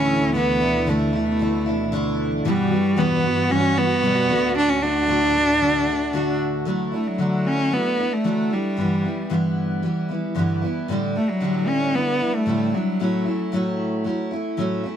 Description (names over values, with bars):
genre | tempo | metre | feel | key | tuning
pop | 114 BPM | 4/4 | straight | D major | A4 = 439 Hz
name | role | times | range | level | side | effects
rich cello | melody | 0.0-13.5 s | F#3 to D4 | -21 LUFS | equal | plate reverb
picked steel-string acoustic guitar | accompaniment | 0.0-15.0 s | E2 to F#4 | -23 LUFS | equal | double-tracked left and right, plate reverb
warm studio string section | sustained chords | 0.0-6.6 s | D2 to F#4 | -29 LUFS | equal | none
room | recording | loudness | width
moderate studio ambience, RT60 0.5 s | none | -19 LUFS | side -9 dB against mid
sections
0.0-6.7 A section; 6.7-15.0 B section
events
none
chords
0.0 Dsus2; 2.5 Emadd9; 4.3 D; 6.7 Dadd9; 8.8 G6; 10.9 A7sus4; 13.0 F#m7/A